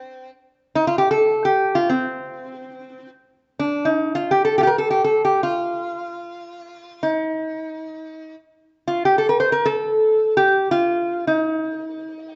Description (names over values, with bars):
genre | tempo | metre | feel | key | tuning
Arabic maqam ensemble | free time | none | none | C maqam rast | A4 = 435 Hz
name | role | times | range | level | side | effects
metal-body resonator slide guitar | solo | 0.0-12.4 s | C4 to C5 | -21 LUFS | equal | none
room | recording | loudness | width
moderate recital hall reverb, RT60 1.4 s | dark, warm production, nothing above 7.8 kHz | -20 LUFS | mono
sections
0.0-3.4 A section; 3.4-12.4 A section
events
none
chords
none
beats
free time